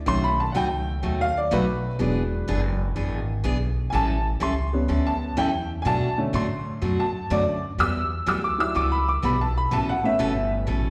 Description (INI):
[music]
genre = country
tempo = 124 BPM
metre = 4/4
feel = swing 67% on 8ths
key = unclear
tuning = A4 = 440 Hz
[part]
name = clear upright piano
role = accompaniment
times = 0.0-10.7 s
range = D3 to E6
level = -27 LUFS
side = equal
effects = slapback echo
[part]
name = upright bass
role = bass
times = 0.0-10.9 s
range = E1 to B2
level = -29 LUFS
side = equal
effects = none
[part]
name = picked steel-string acoustic guitar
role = accompaniment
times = 0.1-10.9 s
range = B2 to A4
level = -30 LUFS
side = equal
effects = slapback echo
[sound]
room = moderate club reverb, RT60 0.5 s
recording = live gig heard through the venue's PA, recital hall reverb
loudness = -24 LUFS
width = mono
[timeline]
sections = 0.0-10.9 A section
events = upright piano solo 0.0-10.9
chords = 0.1 B7; 2.0 E7; 3.9 A7; 5.9 Bm7; 7.8 Emadd9; 9.7 Aadd9